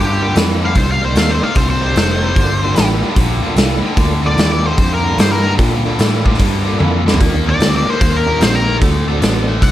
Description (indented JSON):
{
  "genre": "blues rock power trio and southern rock",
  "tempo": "149 BPM",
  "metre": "4/4",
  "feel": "swing 65% on 8ths",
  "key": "G minor",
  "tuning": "A4 = 440 Hz",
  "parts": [
    { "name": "octave-fuzz lead guitar", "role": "melody", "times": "0.0-9.7 s", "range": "G4 to F#5", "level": "-19 LUFS", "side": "left 1 dB", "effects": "wah, distortion" },
    { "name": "biting overdriven guitar", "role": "riff", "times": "0.0-9.7 s", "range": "G2 to C4", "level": "-20 LUFS", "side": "left 1 dB", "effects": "none" },
    { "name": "vintage muted picked electric bass", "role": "bass", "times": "0.0-9.7 s", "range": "F1 to Bb2", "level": "-17 LUFS", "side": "equal", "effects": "none" },
    { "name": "tonewheel organ", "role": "sustained chords", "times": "0.2-9.5 s", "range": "Bb3 to Bb4", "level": "-26 LUFS", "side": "right 3 dB", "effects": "chorus vibrato, slow rotary speaker" },
    { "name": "raw garage drum kit", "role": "drums", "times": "0.4-9.7 s", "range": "hi-hat, kick drum, snare drum, toms", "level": "-15 LUFS", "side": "equal", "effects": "none" }
  ],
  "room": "light reverb",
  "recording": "none",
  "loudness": "-12 LUFS",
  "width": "side -13 dB against mid",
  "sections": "0.0-9.7 A section",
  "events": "drum fill 6.8-7.2",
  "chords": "0.0 Gm7; 0.8 Cm7; 2.4 Gm7; 7.2 Ebmaj7; 8.8 D7"
}